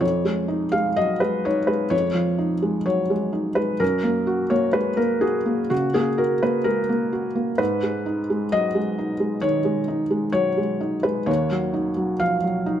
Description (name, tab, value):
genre	neoclassical minimalist piano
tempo	64 BPM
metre	4/4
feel	rubato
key	G# dorian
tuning	A4 = 439 Hz
part	felt-muted upright piano	solo	0.0-12.8 s	D#2 to E#5	-20 LUFS	equal	none
room	light reverb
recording	close, detailed microphones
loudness	-20 LUFS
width	side -10 dB against mid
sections	0.0-12.8 A section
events	none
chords	0.0 C#add9/E#; 3.8 F#; 7.6 G#m; 11.3 D#m7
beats	| 0.03 0.98 1.92 2.87 | 3.81 4.76 5.71 6.66 | 7.59 8.53 9.44 10.36 | 11.28 12.21